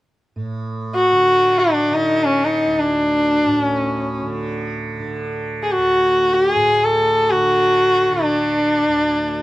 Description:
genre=indian classical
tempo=free time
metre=none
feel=none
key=D major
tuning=A4 = 445 Hz
part: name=tanpura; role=drone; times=0.4-9.4 s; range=D2 to D3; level=-26 LUFS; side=right 2 dB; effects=none
part: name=warm sarangi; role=melody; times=1.0-9.4 s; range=C#4 to A4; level=-15 LUFS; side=equal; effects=none
room=light reverb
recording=dry, close 1970s-style studio recording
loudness=-15 LUFS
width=side -16 dB against mid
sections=0.4-9.4 A section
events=none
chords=none

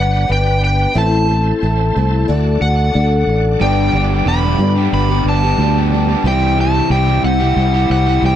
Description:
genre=folk rock and heartland rock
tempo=91 BPM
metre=4/4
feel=straight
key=G major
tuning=A4 = 439 Hz
part: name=overdriven slide guitar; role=melody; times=0.0-8.4 s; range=F#5 to B5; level=-19 LUFS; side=equal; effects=none
part: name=picked twelve-string acoustic guitar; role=accompaniment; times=0.0-8.4 s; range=G2 to B4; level=-20 LUFS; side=left 6 dB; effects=none
part: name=bright tonewheel organ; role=sustained chords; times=0.0-8.4 s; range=B3 to E5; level=-29 LUFS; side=right 1 dB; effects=slow rotary speaker, chorus vibrato
part: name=fingered electric bass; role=bass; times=0.0-8.4 s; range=E1 to G2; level=-15 LUFS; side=right 1 dB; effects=none
part: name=crunchy overdriven guitar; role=riff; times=3.6-8.4 s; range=G2 to G4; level=-18 LUFS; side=right 1 dB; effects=none
room=little or no reverb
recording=dry, close 1970s-style studio recording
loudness=-12 LUFS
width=side -10 dB against mid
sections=0.0-8.4 A section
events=none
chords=0.0 G; 1.0 Am; 2.3 D; 3.6 G; 6.3 C

